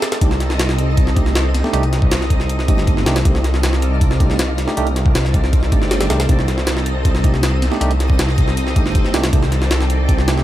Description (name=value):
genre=drum and bass, jungle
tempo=158 BPM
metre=4/4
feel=straight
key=C dorian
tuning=A4 = 440 Hz
part: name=soft string machine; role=sustained chords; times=0.0-10.4 s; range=Eb3 to Eb5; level=-25 LUFS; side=equal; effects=ensemble chorus
part: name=jungle sampler-style drum kit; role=drums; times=0.0-10.4 s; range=hi-hat, kick drum, snare drum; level=-17 LUFS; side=equal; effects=small room reverb
part: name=twinkling granular texture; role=texture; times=0.0-10.4 s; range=Eb4 to Eb6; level=-32 LUFS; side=equal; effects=built-in reverb
part: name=tine electric piano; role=stabs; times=0.2-10.4 s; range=A3 to G4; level=-25 LUFS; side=right 3 dB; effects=medium stereo tremolo, dub echo
part: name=detuned saw bass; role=bass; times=0.2-10.4 s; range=G1 to C2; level=-18 LUFS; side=equal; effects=none
room=digital ambience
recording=none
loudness=-14 LUFS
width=side -14 dB against mid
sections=0.0-10.4 A section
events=break 0.0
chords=0.0 Cm69